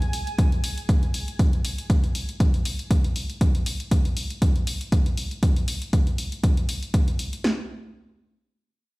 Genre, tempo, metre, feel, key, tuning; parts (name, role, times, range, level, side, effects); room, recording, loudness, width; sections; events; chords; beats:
acid house; 119 BPM; 4/4; swing 55% on 16ths; Bb minor; A4 = 441 Hz
dark analog pad; sustained chords; 0.0-3.4 s; Bb3 to F5; -50 LUFS; right 1 dB
electronic hi-hat; drums; 0.0-7.4 s; -33 LUFS; left 2 dB; overdrive, studio ambience
punchy analog drum machine; drums; 0.4-7.6 s; kick drum, snare drum; -20 LUFS; equal; overdrive, studio ambience
digital ambience; played on a big sound system in a bare room, large studio reverb; -21 LUFS; side -23 dB against mid
0.0-7.4 A section; 7.4-9.0 B section
0.0 Bbm; 7.4 N.C.
0.39 0.89 | 1.39 1.90 2.40 2.91 | 3.41 3.91 4.42 4.92 | 5.43 5.93 6.43 6.94 | 7.44